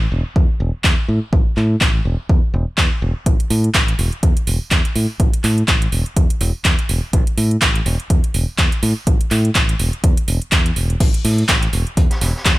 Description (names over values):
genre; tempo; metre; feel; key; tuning
piano house; 124 BPM; 4/4; swing 57% on 16ths; unclear; A4 = 440 Hz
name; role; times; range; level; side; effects
fingered electric bass; bass; 0.0-12.6 s; E1 to A2; -18 LUFS; equal; sidechain pumping
electronic kick drum; drums; 0.4-12.6 s; none; -16 LUFS; equal; small room ambience
house drum kit; drums; 0.8-12.6 s; crash cymbal, handclaps, hi-hat; -20 LUFS; right 1 dB; small room ambience
raw garage drum kit; drums; 11.0-12.6 s; hi-hat, snare drum; -28 LUFS; equal; sidechain pumping on hats, high-pass filter on hats, small room ambience, high-pass filter on snare, high-pass filter on room
room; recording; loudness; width
small room ambience; none; -14 LUFS; side -18 dB against mid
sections
0.0-12.6 A section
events
none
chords
none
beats
0.36 0.84 | 1.33 1.81 2.29 2.78 | 3.26 3.75 4.23 4.71 | 5.20 5.68 6.17 6.65 | 7.13 7.62 8.10 8.59 | 9.07 9.55 10.04 10.52 | 11.00 11.49 11.97 12.46